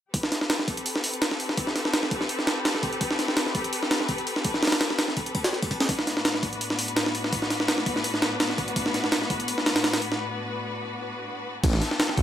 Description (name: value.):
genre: drum and bass, jungle.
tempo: 167 BPM.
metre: 4/4.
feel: swing 53% on 16ths.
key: A dorian.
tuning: A4 = 437 Hz.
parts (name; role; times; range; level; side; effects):
clear studio string section; sustained chords; 0.1-12.2 s; A2 to B4; -30 LUFS; left 2 dB; none.
breakbeat sampler-style drum kit; drums; 0.1-12.2 s; crash cymbal, hi-hat, kick drum, snare drum; -24 LUFS; equal; high-pass filter on kick, high-pass filter on hats, high-pass filter on snare, high-pass filter on cymbals.
detuned saw bass; bass; 11.6-12.2 s; A1 to B1; -24 LUFS; right 1 dB; none.
room: light reverb.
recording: none.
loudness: -23 LUFS.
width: side -10 dB against mid.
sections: 0.1-11.6 A section.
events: break 10.2-11.6.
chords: 0.1 Am9; 5.9 Bm/A; 11.6 Am9.